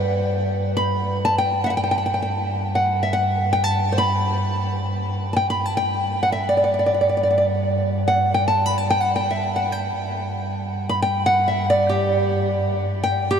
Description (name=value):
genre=arabic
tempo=free time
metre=none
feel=none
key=G maqam ajam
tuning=A4 = 439 Hz
part: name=nylon-string guitar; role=melody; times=0.0-13.4 s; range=G4 to B5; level=-20 LUFS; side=equal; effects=analog delay
part: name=warm double bass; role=drone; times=0.0-13.4 s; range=G2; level=-25 LUFS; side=right 1 dB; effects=stereo widening
room=wet huge ambient reverb, RT60 8.0 s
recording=dreamy mix soaked in reverb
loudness=-18 LUFS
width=side -7 dB against mid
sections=0.0-13.4 A section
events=none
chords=none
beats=free time